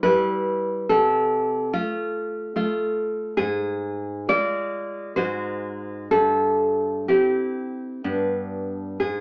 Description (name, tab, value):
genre	romantic piece for solo classical guitar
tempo	60-74 BPM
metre	3/4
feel	rubato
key	C major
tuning	A4 = 435 Hz
part	nylon-string guitar	solo	0.0-9.2 s	G2 to D5	-21 LUFS	equal	none
room	wet studio ambience, RT60 0.5 s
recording	heard from further back in the room, AM radio sound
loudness	-21 LUFS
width	side -35 dB against mid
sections	0.0-9.2 A section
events	none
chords	0.0 C (rootless); 0.9 F/C; 3.4 Fm/Ab; 5.2 Ab7; 6.1 C/G; 8.0 G